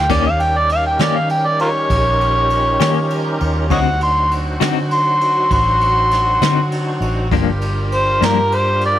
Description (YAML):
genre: slow blues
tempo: 66 BPM (dotted quarters)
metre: 12/8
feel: straight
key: unclear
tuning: A4 = 441 Hz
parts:
  - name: overdriven harmonica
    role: melody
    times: 0.0-9.0 s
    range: F4 to C6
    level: -16 LUFS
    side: equal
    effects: none
  - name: tonewheel organ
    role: sustained chords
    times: 0.0-9.0 s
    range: G3 to C5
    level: -26 LUFS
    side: right 1 dB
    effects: slow rotary speaker, overdrive, chorus vibrato
  - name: warm horn section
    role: sustained chords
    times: 0.0-9.0 s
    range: Eb3 to G4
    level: -26 LUFS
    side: equal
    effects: none
  - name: vintage muted fingered electric bass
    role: bass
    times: 0.0-9.0 s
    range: G1 to Eb3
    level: -20 LUFS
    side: equal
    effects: none
  - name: clean electric guitar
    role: accompaniment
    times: 0.1-8.4 s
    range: G2 to G4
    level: -20 LUFS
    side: left 13 dB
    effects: tremolo
  - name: jazz brush drum kit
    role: drums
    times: 0.1-9.0 s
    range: crash cymbal, kick drum, ride cymbal, snare drum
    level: -25 LUFS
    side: right 3 dB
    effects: none
room: light reverb, studio reverb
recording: 1960s-style stereo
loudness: -14 LUFS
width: side -12 dB against mid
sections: 0.0-9.0 A section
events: harmonica solo 0.0-9.0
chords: 0.1 Eb7; 3.7 D7b9; 7.3 Gm7